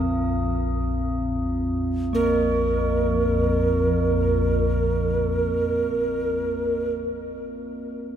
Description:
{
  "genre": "world meditative, free-time meditation music",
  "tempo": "free time",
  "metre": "none",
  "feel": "none",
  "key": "unclear",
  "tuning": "A4 = 438 Hz",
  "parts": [
    { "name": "deep rumbling drone", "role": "drone", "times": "0.0-7.0 s", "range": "Bb1 to F2", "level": "-26 LUFS", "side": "left 1 dB", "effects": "built-in reverb, phaser, lush chorus" },
    { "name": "bronze singing bowl", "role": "texture", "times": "0.0-6.9 s", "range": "Bb3 to F4", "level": "-27 LUFS", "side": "right 2 dB", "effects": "none" },
    { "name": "breathy hollow Native American-style cedar flute", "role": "melody", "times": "2.1-6.9 s", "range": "Bb4", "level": "-24 LUFS", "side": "right 2 dB", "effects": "diffuse ambient delay" }
  ],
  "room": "wet cathedral reverb, RT60 5.6 s",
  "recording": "in a vast, echoing space",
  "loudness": "-21 LUFS",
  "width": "side -9 dB against mid",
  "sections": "0.0-2.2 A section; 2.2-6.4 B section",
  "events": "none",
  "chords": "none"
}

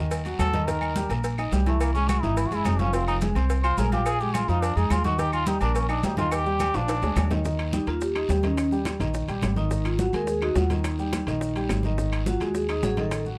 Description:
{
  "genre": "Afro-Cuban jazz",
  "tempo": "213 BPM",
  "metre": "4/4",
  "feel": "straight",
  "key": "unclear",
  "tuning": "A4 = 440 Hz",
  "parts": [
    { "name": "dark concert grand piano", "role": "accompaniment", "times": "0.0-13.4 s", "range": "Eb3 to F6", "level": "-32 LUFS", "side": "equal", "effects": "none" },
    { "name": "upright bass", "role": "bass", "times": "0.0-13.4 s", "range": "F1 to F2", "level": "-29 LUFS", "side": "equal", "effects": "none" },
    { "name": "agogo bells and timbales", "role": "percussion", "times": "0.1-13.3 s", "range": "none", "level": "-38 LUFS", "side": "equal", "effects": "none" },
    { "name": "congas", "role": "percussion", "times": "0.1-13.4 s", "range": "none", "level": "-35 LUFS", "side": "equal", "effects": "none" },
    { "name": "cowbell and bongos", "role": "percussion", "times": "0.1-13.3 s", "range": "none", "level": "-38 LUFS", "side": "equal", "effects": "none" },
    { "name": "guiro", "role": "percussion", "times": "0.1-13.4 s", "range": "none", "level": "-46 LUFS", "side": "equal", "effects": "none" },
    { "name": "maracas", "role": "percussion", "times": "0.1-13.4 s", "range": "none", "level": "-48 LUFS", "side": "equal", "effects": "none" },
    { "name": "trombone with metal mute", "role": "second line", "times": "0.4-7.4 s", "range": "A3 to C5", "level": "-30 LUFS", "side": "equal", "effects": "none" },
    { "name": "claves", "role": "percussion", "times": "0.4-13.3 s", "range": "none", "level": "-42 LUFS", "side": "equal", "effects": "none" },
    { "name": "vibraphone with soft mallets", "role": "melody", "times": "7.7-13.2 s", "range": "Db4 to Bb4", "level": "-30 LUFS", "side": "equal", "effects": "none" }
  ],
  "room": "little or no reverb",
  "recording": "close, detailed microphones",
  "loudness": "-25 LUFS",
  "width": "mono",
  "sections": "0.0-7.4 A section; 7.4-13.4 B section",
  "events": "trombone solo 0.0-7.4; drum fill 6.7-7.4",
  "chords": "0.0 Ebdim; 0.7 Eb; 1.8 Caug; 2.9 Fm; 4.1 Bb5; 5.2 Eb; 6.9 Bb7; 7.4 Eb; 9.7 Ab5; 10.8 Eb; 12.0 Ab5"
}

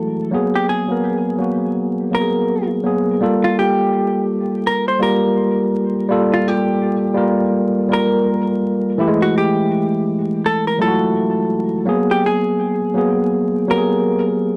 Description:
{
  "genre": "hip hop",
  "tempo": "83 BPM",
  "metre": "4/4",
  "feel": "swing 60% on 16ths",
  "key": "unclear",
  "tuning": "A4 = 442 Hz",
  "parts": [
    { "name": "vintage hollow-body jazz guitar", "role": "melody", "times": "0.0-14.2 s", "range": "F4 to C5", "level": "-23 LUFS", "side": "equal", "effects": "low-pass filter, tape echo" },
    { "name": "tine electric piano", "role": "accompaniment", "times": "0.0-14.6 s", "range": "E3 to F#5", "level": "-19 LUFS", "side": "equal", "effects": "cassette tape, low-pass filter" }
  ],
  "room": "light reverb",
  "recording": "dry, gritty hardware recording, vinyl crackle",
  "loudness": "-18 LUFS",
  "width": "mono",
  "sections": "0.0-3.2 A section; 3.2-14.6 B section",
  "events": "none",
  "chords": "0.3 Abm9; 3.2 Gm9; 9.0 F#m9; 11.9 Abm9"
}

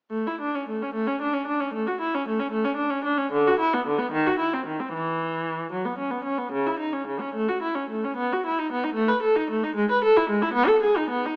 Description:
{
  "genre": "classical, baroque-style suite movement for unaccompanied viola",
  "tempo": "75 BPM (dotted quarters)",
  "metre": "6/8",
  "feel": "uneven beats, rubato",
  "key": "A major",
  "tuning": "A4 = 440 Hz",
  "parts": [
    { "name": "warm viola", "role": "solo", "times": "0.1-11.4 s", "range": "C#3 to B4", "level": "-25 LUFS", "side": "equal", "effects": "none" }
  ],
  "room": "moderate recital hall reverb, RT60 1.6 s",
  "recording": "small speaker sound",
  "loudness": "-25 LUFS",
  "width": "mono",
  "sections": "0.1-11.4 A section",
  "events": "none",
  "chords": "none"
}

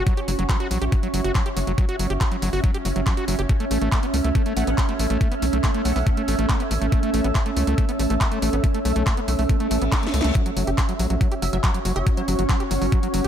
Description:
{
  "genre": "psychedelic trance",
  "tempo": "140 BPM",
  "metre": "4/4",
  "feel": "straight",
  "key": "unclear",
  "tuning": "A4 = 439 Hz",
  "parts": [
    { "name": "evolving wavetable pad", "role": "sustained chords", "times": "0.0-13.3 s", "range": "C#4", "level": "-27 LUFS", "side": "right 4 dB", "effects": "chorus, built-in reverb, sidechain pumping" },
    { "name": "overdriven acid bass", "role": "riff", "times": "0.0-13.3 s", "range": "F#3 to G4", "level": "-28 LUFS", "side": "equal", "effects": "distortion, auto-pan, vintage 12-bit sampler grit, sidechain pumping, tape echo" },
    { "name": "tight sequencer bass", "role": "bass", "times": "0.0-13.3 s", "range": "F#1 to C#2", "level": "-24 LUFS", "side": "equal", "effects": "none" },
    { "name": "airy breathy pad", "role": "texture", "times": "0.0-13.3 s", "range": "A3 to E6", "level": "-31 LUFS", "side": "left 1 dB", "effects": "chorus, sidechain pumping" },
    { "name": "electronic kick drum", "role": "drums", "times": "0.1-13.0 s", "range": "none", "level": "-21 LUFS", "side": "equal", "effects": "none" },
    { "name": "techno drum kit", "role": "drums", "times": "0.1-13.3 s", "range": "handclaps, hi-hat, snare drum", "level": "-30 LUFS", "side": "equal", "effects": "overdrive" },
    { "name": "resonant blip pluck", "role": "second line", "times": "4.6-6.0, 11.4-12.8 s", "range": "C#5 to F#5", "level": "-37 LUFS", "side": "right 4 dB", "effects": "phaser, sidechain pumping, high-pass filter, dub echo" },
    { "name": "reverse cymbal", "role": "sound effects", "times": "9.7-10.4 s", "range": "none", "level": "-35 LUFS", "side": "left 5 dB", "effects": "none" }
  ],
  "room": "light reverb",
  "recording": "none",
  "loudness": "-19 LUFS",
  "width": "side -9 dB against mid",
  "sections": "0.0-13.3 A section",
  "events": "reverse cymbal 9.7-10.4; drum fill 9.9-10.4",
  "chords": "0.0 F#5; 3.5 A5; 10.4 F#5"
}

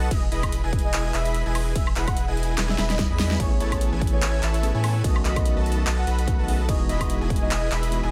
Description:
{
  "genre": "future bass",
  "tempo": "146 BPM",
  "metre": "4/4",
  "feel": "swing 56% on 16ths, half-time",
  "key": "E major",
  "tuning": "A4 = 439 Hz",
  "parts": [
    { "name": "warm velvety synth lead", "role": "melody", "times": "0.0-8.0 s", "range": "C#5 to F#5", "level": "-35 LUFS", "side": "equal", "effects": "chorus, sidechain pumping" },
    { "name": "airy dreamy lead", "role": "arpeggios", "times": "0.0-8.1 s", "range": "G#5 to B5", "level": "-39 LUFS", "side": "equal", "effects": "chorus, sidechain pumping, tape echo" },
    { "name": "dense compressed supersaw", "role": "riff", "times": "0.0-8.1 s", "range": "E4 to B5", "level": "-34 LUFS", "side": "equal", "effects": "sidechain pumping" },
    { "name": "saturated sub bass", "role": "bass", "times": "0.0-8.1 s", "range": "E1 to A2", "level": "-27 LUFS", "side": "equal", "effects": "sidechain pumping" },
    { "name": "big-room dance drum kit", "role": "drums", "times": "0.1-8.0 s", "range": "crash cymbal, handclaps, hi-hat, snare drum, woodblock", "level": "-32 LUFS", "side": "equal", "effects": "none" },
    { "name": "electronic kick drum", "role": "drums", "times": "0.1-7.4 s", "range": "none", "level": "-27 LUFS", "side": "equal", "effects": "none" },
    { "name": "tine electric piano", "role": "accompaniment", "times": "3.4-8.1 s", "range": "D#3 to A4", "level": "-34 LUFS", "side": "equal", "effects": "sidechain pumping" }
  ],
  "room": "little or no reverb",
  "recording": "none",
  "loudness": "-23 LUFS",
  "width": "mono",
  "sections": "0.0-8.1 A section",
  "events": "drum fill 2.6-3.4",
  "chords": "0.1 Emaj7; 3.4 Amaj9; 5.0 B7; 6.7 Emaj7"
}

